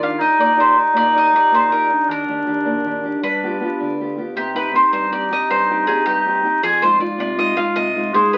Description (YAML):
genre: italian folk, Italian serenade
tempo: 106 BPM (dotted quarters)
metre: 6/8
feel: straight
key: Eb major, C minor from 4.4 s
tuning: A4 = 440 Hz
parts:
  - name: bowl-back mandolin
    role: melody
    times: 0.0-8.4 s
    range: G4 to F5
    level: -22 LUFS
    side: equal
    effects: none
  - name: warm clarinet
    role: second line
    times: 0.0-8.4 s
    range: D4 to Ab4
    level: -20 LUFS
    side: equal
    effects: none
  - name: nylon-string guitar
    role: accompaniment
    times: 0.0-8.4 s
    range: F2 to D5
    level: -27 LUFS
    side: equal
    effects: none
room: wet studio reverb, RT60 0.6 s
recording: very old 78 rpm record, vinyl crackle, nothing above 7.8 kHz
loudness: -17 LUFS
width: mono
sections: 0.0-4.4 A section; 4.4-8.4 B section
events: none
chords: 0.0 Ebmaj7; 3.2 G7; 4.4 Cm; 6.6 Fm7